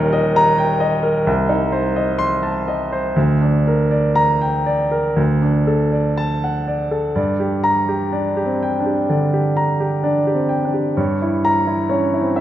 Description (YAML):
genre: classical, romantic character piece for solo piano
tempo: 59-66 BPM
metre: 4/4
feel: rubato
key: G minor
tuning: A4 = 441 Hz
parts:
  - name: warm baby grand piano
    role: solo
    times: 0.0-12.4 s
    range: Eb1 to C6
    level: -16 LUFS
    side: equal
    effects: none
room: wet recital hall reverb, RT60 1.8 s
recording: none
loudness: -16 LUFS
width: side -12 dB against mid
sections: 0.0-7.2 A section; 7.2-12.4 B section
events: none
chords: 0.0 Eb; 1.3 Adim/C; 3.2 Gm/D; 5.2 D; 7.2 Gm; 11.0 Gdim7